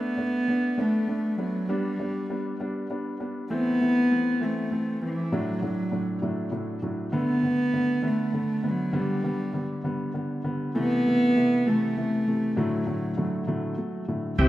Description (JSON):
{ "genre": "pop", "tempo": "66 BPM (dotted quarters)", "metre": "6/8", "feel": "straight", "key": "G major", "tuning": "A4 = 439 Hz", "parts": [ { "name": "warm cello", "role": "melody", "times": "0.0-14.5 s", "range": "E3 to B3", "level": "-25 LUFS", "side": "equal", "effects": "none" }, { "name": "felt-muted upright piano", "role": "accompaniment", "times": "0.0-14.5 s", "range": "A2 to D4", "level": "-28 LUFS", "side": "equal", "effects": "none" }, { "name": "tonewheel organ", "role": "sustained chords", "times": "14.4-14.5 s", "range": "C3 to G5", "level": "-22 LUFS", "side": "right 1 dB", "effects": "overdrive, fast rotary speaker" }, { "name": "upright bass", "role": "bass", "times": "14.4-14.5 s", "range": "C2", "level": "-19 LUFS", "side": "equal", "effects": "none" } ], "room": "moderate lush hall reverb, RT60 2.9 s", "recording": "rough home demo mix", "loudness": "-24 LUFS", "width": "side -15 dB against mid", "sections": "0.0-14.4 A section", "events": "none", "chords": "0.0 Bm7; 1.7 G; 3.5 Am; 5.3 D/A; 7.1 Bm7; 8.9 G; 10.8 Am; 12.6 D/A", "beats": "0.78 | 1.69 2.60 | 3.51 4.42 | 5.32 6.23 | 7.14 8.04 | 8.95 9.86 | 10.76 11.67 | 12.57 13.48 | 14.39" }